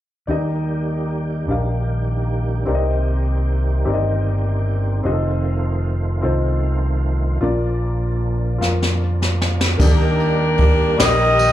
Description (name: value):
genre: slow gospel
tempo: 50 BPM (dotted quarters)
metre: 6/8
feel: straight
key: Eb major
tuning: A4 = 441 Hz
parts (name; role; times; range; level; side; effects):
- warm upright piano; accompaniment; 0.3-11.5 s; Bb2 to F5; -24 LUFS; left 2 dB; slapback echo
- percussive tonewheel organ; sustained chords; 0.3-11.5 s; Eb3 to G4; -29 LUFS; right 4 dB; fast rotary speaker, overdrive, chorus vibrato
- fingered electric bass; bass; 0.3-11.5 s; F1 to F2; -19 LUFS; equal; none
- jazz brush drum kit; drums; 8.6-11.5 s; crash cymbal, kick drum, ride cymbal, snare drum; -19 LUFS; equal; none
- mellow horn section; melody; 9.8-11.5 s; D4 to Eb5; -17 LUFS; left 1 dB; none
- tambourine; percussion; 9.8-11.5 s; none; -30 LUFS; right 4 dB; none
room: little or no reverb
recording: live gig heard through the venue's PA, club reverb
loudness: -17 LUFS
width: side -13 dB against mid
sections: 0.3-9.8 A section; 9.8-11.5 B section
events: drum fill 8.6-9.8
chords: 0.3 Ebmaj7; 2.7 Cm7; 5.0 F7; 7.4 Bb; 9.8 Ebmaj7